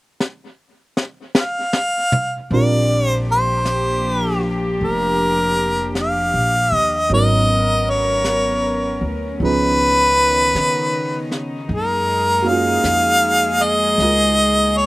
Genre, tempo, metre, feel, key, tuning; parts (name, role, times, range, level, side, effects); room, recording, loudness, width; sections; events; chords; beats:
jazz ballad; 52 BPM; 4/4; swing 66% on 8ths; A4 = 443 Hz
jazz brush drum kit; drums; 0.2-14.9 s; brushed snare drum, hi-hat, snare drum, toms; -20 LUFS; left 1 dB
bright harmonica; melody; 1.4-14.9 s; Bb4 to F5; -16 LUFS; equal
warm upright piano; accompaniment; 2.5-14.9 s; F3 to Bb4; -25 LUFS; right 4 dB
warm studio cello section; sustained chords; 2.5-14.9 s; Eb3 to Bb4; -23 LUFS; equal
upright bass; bass; 2.5-14.9 s; F1 to Db3; -23 LUFS; equal
little or no reverb; recorded outdoors, with no room sound; -15 LUFS; side -20 dB against mid
0.0-2.5 A section; 2.5-14.9 B section
drum fill 0.2-2.5
0.0 N.C.; 2.5 Bb6; 7.1 Abm11; 9.4 Db9; 11.7 Gbmaj9
0.20 1.35 | 2.50 3.66 4.81 5.96 | 7.11 8.26 9.40 10.55 | 11.70 12.84 13.99